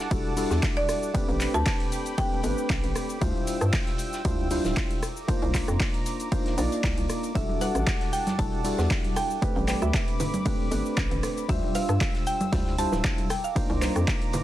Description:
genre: deep house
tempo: 116 BPM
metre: 4/4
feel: swing 54% on 16ths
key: unclear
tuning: A4 = 439 Hz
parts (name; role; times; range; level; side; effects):
- warm analog pad; sustained chords; 0.0-14.4 s; F#5 to E6; -38 LUFS; right 2 dB; chorus, sidechain pumping
- percussive organ stab; stabs; 0.0-14.4 s; G3 to D5; -30 LUFS; left 1 dB; chorus, sidechain pumping, analog delay
- warm soul drum kit; drums; 0.0-14.4 s; hi-hat, snare drum; -44 LUFS; left 2 dB; none
- hollow knocking FM bass; bass; 0.1-14.1 s; D1 to G2; -28 LUFS; equal; sidechain pumping
- electronic kick drum; drums; 0.1-14.2 s; none; -28 LUFS; equal; overdrive
- punchy analog drum machine; drums; 0.1-14.4 s; cabasa, handclaps, hi-hat, ride cymbal, rim click; -34 LUFS; equal; overdrive
- marimba with hard mallets; melody; 0.8-2.9 s; D5 to A5; -32 LUFS; right 1 dB; tape echo
- mallet-like synth pluck; melody; 7.4-14.2 s; E5 to A5; -32 LUFS; right 2 dB; chorus, tape echo
- congas and bongos; percussion; 7.5-14.4 s; none; -32 LUFS; right 2 dB; overdrive
room: light reverb, digital ambience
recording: dense, heavily limited modern master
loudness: -24 LUFS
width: side -13 dB against mid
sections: 0.0-14.4 A section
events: none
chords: 0.0 Em11; 1.1 Am11; 3.2 Dm11; 5.0 Cm11; 7.4 Em11; 9.4 Am11; 11.5 Dm11; 13.3 Cm11

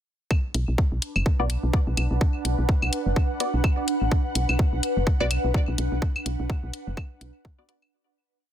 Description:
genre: minimal techno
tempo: 126 BPM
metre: 4/4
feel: swing 57% on 16ths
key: B minor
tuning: A4 = 440 Hz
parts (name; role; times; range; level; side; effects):
- electronic kick drum; drums; 0.3-7.6 s; none; -22 LUFS; equal; none
- claves; percussion; 0.3-7.9 s; none; -30 LUFS; left 1 dB; digital delay
- ethereal airy pad; texture; 1.1-7.9 s; D4 to F#5; -30 LUFS; right 1 dB; ensemble chorus, built-in reverb, phaser, sidechain pumping
- woody FM bass; bass; 0.5-7.3 s; F#1 to B1; -25 LUFS; equal; sidechain pumping
- electronic hi-hat; drums; 0.5-7.8 s; none; -28 LUFS; left 2 dB; none
- filtered dub chord stab; stabs; 1.4-7.8 s; B3 to D5; -29 LUFS; left 2 dB; phaser, digital delay
room: little or no reverb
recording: dense, heavily limited modern master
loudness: -22 LUFS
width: side -10 dB against mid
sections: 0.3-7.9 groove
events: fade-out 5.4-7.9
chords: 0.3 Bm

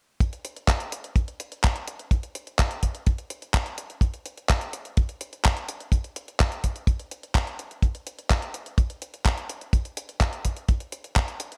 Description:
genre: italo disco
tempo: 126 BPM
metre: 4/4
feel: straight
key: none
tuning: none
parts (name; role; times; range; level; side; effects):
- clean 12-bit digital drum machine; drums; 0.2-11.6 s; handclaps, hi-hat; -31 LUFS; equal; overdrive
- kick drum; drums; 0.2-11.3 s; none; -24 LUFS; equal; none
room: little or no reverb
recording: dark, warm production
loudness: -27 LUFS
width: mono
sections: 0.2-11.6 A section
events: none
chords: none

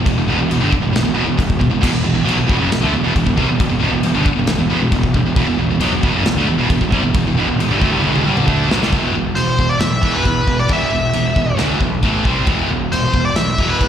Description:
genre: heavy metal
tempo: 136 BPM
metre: 4/4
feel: straight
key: E minor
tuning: A4 = 435 Hz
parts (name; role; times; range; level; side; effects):
- high-gain distorted guitar; riff; 0.0-13.9 s; E2 to D4; -20 LUFS; left 9 dB; distortion
- high-gain distorted guitar; riff; 0.0-13.9 s; E2 to D4; -19 LUFS; right 10 dB; distortion, slapback echo
- fuzz picked electric bass; bass; 0.0-13.9 s; E1 to E2; -20 LUFS; equal; overdrive
- modern studio drum kit; drums; 0.1-13.9 s; china cymbal, crash cymbal, kick drum, snare drum, toms; -20 LUFS; equal; none
- nasal lead guitar with a parked wah; melody; 9.4-13.9 s; B4 to E5; -19 LUFS; left 1 dB; overdrive, slapback echo, ping-pong delay
room: light reverb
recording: live gig heard through the venue's PA, recital hall reverb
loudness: -14 LUFS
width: side -9 dB against mid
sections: 0.0-8.9 A section; 8.9-13.9 B section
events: drum fill 8.0-8.9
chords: 0.0 Em; 8.9 E5; 12.0 A5; 12.3 C5; 12.5 E5

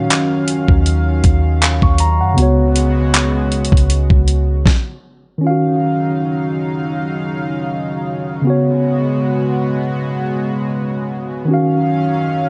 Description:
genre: contemporary R&B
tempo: 79 BPM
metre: 4/4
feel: swing 54% on 16ths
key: Eb minor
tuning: A4 = 442 Hz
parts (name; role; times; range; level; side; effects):
- mellow tine electric piano; accompaniment; 0.0-12.5 s; Db3 to Db6; -19 LUFS; equal; analog delay
- chorused pulse-width pad; sustained chords; 0.0-12.5 s; Db3 to F5; -26 LUFS; equal; none
- soft 808-style bass; bass; 0.0-4.6 s; Db2 to Gb2; -17 LUFS; equal; none
- dusty soul sampler-style drum kit; drums; 0.1-4.9 s; handclaps, hi-hat, kick drum, snare drum; -16 LUFS; equal; none
room: little or no reverb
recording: echo-heavy mix, nothing above 10.4 kHz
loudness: -16 LUFS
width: mono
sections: 0.0-5.4 A section; 5.4-12.5 B section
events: stop 4.7-5.4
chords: 0.0 Ebm9; 2.4 Db7sus4; 5.4 Ebm9; 8.5 Db7sus4; 11.5 Ebm9

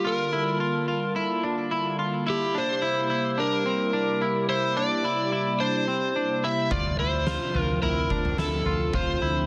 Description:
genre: dream pop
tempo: 108 BPM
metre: 4/4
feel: straight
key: unclear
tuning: A4 = 442 Hz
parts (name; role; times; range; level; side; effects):
- overdriven slide guitar; melody; 0.0-9.5 s; G4 to E5; -30 LUFS; equal; delay
- hollow soft pad; sustained chords; 0.0-9.5 s; C3 to A5; -32 LUFS; equal; chorus
- semi-hollow electric guitar; arpeggios; 0.0-9.5 s; C4 to F4; -31 LUFS; equal; subtle chorus, delay
- fingered electric bass; bass; 6.7-9.5 s; D2; -32 LUFS; equal; none
- oversized low-tuned drum kit; drums; 6.7-9.1 s; kick drum, snare drum, toms; -33 LUFS; equal; none
room: moderate plate reverb, RT60 2.1 s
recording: none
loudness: -26 LUFS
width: mono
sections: 0.0-9.5 A section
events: none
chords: 0.0 Gm7; 2.3 C7; 6.7 Dm7

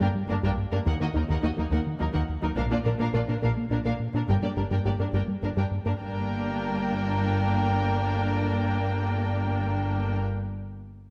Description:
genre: cinematic, hybrid orchestral and electronic film score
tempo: 70 BPM (dotted quarters)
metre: 6/8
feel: straight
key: G minor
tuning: A4 = 440 Hz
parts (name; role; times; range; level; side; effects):
- rich symphonic violin section; second line; 0.0-10.2 s; D4 to G5; -36 LUFS; equal; none
- rich symphonic viola section; accompaniment; 0.0-10.2 s; Bb3 to Eb4; -35 LUFS; equal; none
- soft round pluck; arpeggios; 0.0-5.9 s; Eb3 to Bb4; -35 LUFS; equal; chorus, delay
- round analog bass; riff; 0.0-5.9 s; Eb2 to Bb3; -31 LUFS; equal; none
- rich studio double bass section; bass; 0.0-10.2 s; G1 to Eb2; -34 LUFS; equal; none
- rich symphonic cello section; bass; 0.0-10.2 s; Eb2 to Bb2; -33 LUFS; equal; none
- taiko ensemble; drums; 0.4-4.1 s; none; -40 LUFS; equal; none
room: moderate scoring stage reverb, RT60 1.7 s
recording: none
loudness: -27 LUFS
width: mono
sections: 0.0-6.0 A section; 6.0-9.4 B section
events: none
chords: 0.0 Gm; 0.9 Ebm; 2.6 Bb; 4.3 Gm

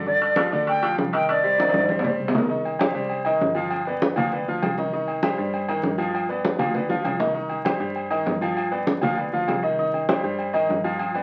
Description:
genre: latin, salsa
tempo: 198 BPM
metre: 4/4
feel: straight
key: C harmonic minor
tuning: A4 = 445 Hz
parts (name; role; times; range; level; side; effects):
- bright grand piano; accompaniment; 0.0-11.2 s; D3 to F5; -27 LUFS; equal; none
- fingered electric bass; bass; 0.0-11.2 s; G1 to G2; -36 LUFS; equal; none
- bright silver concert flute; melody; 0.1-2.2 s; D5 to G5; -24 LUFS; equal; none
- congas; percussion; 0.1-11.2 s; none; -29 LUFS; equal; none
- timbales and agogo bells; percussion; 0.2-11.2 s; none; -30 LUFS; equal; none
room: wet studio reverb, RT60 0.6 s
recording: very old 78 rpm record, vinyl crackle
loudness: -23 LUFS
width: mono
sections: 0.0-2.5 A section; 2.5-11.2 B section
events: drum fill 1.6-2.5, 6.9-7.4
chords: 0.1 G5; 1.3 Cmadd9; 2.5 Cm; 3.7 G7; 4.9 Cm; 6.1 G7; 7.4 Cm; 8.6 G7; 9.8 Cm

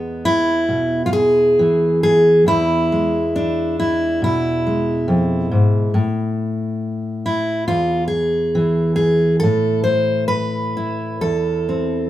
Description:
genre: folk, solo fingerstyle acoustic guitar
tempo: 68 BPM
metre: 4/4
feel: rubato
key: A harmonic minor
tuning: A4 = 440 Hz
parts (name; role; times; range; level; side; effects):
- fingerpicked steel-string acoustic guitar; solo; 0.0-12.1 s; E2 to C5; -16 LUFS; equal; none
room: moderate studio ambience, RT60 0.5 s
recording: band playing live in one room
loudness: -15 LUFS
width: side -13 dB against mid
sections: 0.0-12.1 A section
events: none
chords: 0.0 E; 5.9 A5; 9.4 Amadd9

